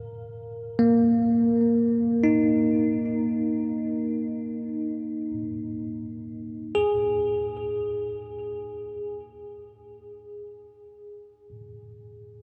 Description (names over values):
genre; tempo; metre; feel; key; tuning
ambient; free time; none; none; unclear; A4 = 440 Hz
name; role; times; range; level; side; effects
bell-like tine electric piano; solo; 0.0-12.4 s; Bb3 to Bb4; -27 LUFS; equal; tape echo
room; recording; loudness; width
wet huge ambient reverb, RT60 7.7 s; dark, warm production; -25 LUFS; mono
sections
0.0-6.8 A section; 6.8-10.0 B section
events
none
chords
none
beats
free time